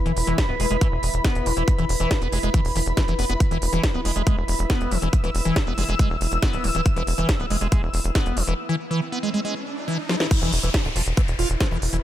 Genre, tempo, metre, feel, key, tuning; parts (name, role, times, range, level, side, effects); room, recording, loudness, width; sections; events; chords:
psychedelic trance; 139 BPM; 4/4; straight; E major; A4 = 440 Hz
granular cloud pad; texture; 0.0-12.0 s; E4 to E6; -29 LUFS; equal; built-in reverb, sidechain pumping
liquid acid bass; riff; 0.1-12.0 s; D3 to F4; -27 LUFS; moving between left 5 dB and right 4 dB; phaser, auto-pan, cassette tape, sidechain pumping, digital delay
tight sequencer bass; bass; 0.1-12.0 s; D1 to F1; -24 LUFS; equal
techno drum kit; drums; 0.1-12.0 s; crash cymbal, hi-hat, snare drum; -28 LUFS; equal
electronic kick drum; drums; 0.4-11.7 s; -22 LUFS; equal
riser and downlifter; sound effects; 8.5-12.0 s; -32 LUFS; equal
digital ambience; -20 LUFS; side -12 dB against mid
0.0-10.3 A section; 10.3-12.0 B section
riser 8.5-10.3; break 8.6-10.3; drum fill 10.1; drop 10.3-12.0
0.0 E5